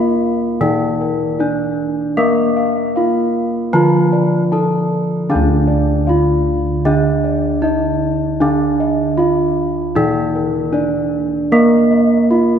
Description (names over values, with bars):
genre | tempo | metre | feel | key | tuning
gamelan | 77 BPM | 4/4 | straight | D pelog | A4 = 440 Hz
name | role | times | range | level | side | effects
gamelan-type bronze metallophone | melody | 0.0-12.6 s | Bb3 to A4 | -18 LUFS | right 1 dB | none
gamelan-type bronze metallophone | accompaniment | 0.0-12.6 s | D3 to Bb3 | -18 LUFS | right 1 dB | none
gamelan-type bossed gongs | arpeggios | 0.0-12.6 s | Bb4 to A5 | -22 LUFS | left 3 dB | none
gamelan-type bossed gongs | bass | 0.0-12.6 s | D2 to Bb4 | -20 LUFS | equal | none
room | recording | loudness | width
wet church reverb, RT60 3.1 s | recorded in a church or concert hall | -13 LUFS | side -8 dB against mid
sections
0.0-12.6 A section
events
none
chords
none